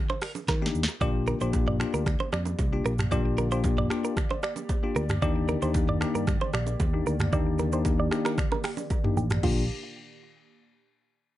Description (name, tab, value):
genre	afrobeats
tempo	114 BPM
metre	4/4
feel	straight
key	Bb major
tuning	A4 = 444 Hz
part	direct-recorded clean electric guitar	riff	0.1-9.6 s	F4 to D5	-33 LUFS	right 4 dB	low-pass filter, digital delay
part	bongos and congas	percussion	0.1-9.7 s	none	-38 LUFS	right 6 dB	none
part	afro-pop drum kit	drums	0.2-9.6 s	crash cymbal, finger snaps, hi-hat, kick drum, rim click, shaker, snare drum, toms	-28 LUFS	equal	none
part	fingered electric bass	bass	0.5-9.7 s	A1 to Eb3	-29 LUFS	equal	none
part	bell-like tine electric piano	accompaniment	0.6-9.6 s	Bb3 to G4	-30 LUFS	left 5 dB	low-pass filter, plate reverb
part	hollow soft pad	sustained chords	1.0-9.7 s	Bb2 to D5	-37 LUFS	right 3 dB	chorus, low-pass filter
room	light reverb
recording	nothing above 10.8 kHz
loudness	-24 LUFS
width	side -14 dB against mid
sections	0.0-1.0 A section; 1.0-9.4 B section; 9.4-11.4 C section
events	drum fill 0.5-1.0; filter sweep 1.0-9.4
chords	0.0 Ebmaj7; 1.0 Bb6; 5.2 Ebmaj7; 9.4 Bb6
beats	0.48 | 1.01 1.54 2.06 2.59 | 3.12 3.64 4.17 4.70 | 5.22 5.75 6.28 6.80 | 7.33 7.85 8.38 8.91 | 9.43